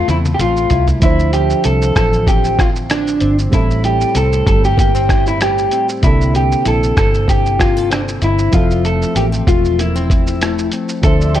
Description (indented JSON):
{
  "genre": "indie pop, bedroom pop",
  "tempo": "96 BPM",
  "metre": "4/4",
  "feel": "swing 55% on 16ths",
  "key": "F major",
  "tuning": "A4 = 440 Hz",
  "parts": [
    { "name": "electric guitar through a small old amp", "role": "melody", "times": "0.0-11.4 s", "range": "D4 to A4", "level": "-17 LUFS", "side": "equal", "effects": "lush chorus" },
    { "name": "nylon-string guitar", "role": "accompaniment", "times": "0.0-11.4 s", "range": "A2 to A4", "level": "-22 LUFS", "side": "left 4 dB", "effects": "analog chorus, vibrato effect" },
    { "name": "vintage muted fingered electric bass", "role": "bass", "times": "0.0-11.4 s", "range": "E1 to E2", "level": "-17 LUFS", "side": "equal", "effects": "none" },
    { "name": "lo-fi sampler-style drum kit", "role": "drums", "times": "0.1-11.4 s", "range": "hi-hat, kick drum, rim click, shaker, toms", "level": "-16 LUFS", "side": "equal", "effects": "none" },
    { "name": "reed electric piano", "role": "accompaniment", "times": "1.0-11.4 s", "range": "D3 to E5", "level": "-24 LUFS", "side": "right 4 dB", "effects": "cassette tape" },
    { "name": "warm analog pad", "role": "sustained chords", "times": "11.0-11.4 s", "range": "D5 to E6", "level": "-25 LUFS", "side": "right 1 dB", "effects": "chorus" }
  ],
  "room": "light reverb, digital ambience",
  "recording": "dark, warm production",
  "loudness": "-12 LUFS",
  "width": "side -12 dB against mid",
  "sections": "0.0-1.0 A section; 1.0-11.4 B section",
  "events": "drum fill 0.0-1.0",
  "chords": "0.0 Fmaj7; 1.0 Dm9; 3.5 Am7; 6.0 C13; 8.5 Fmaj7"
}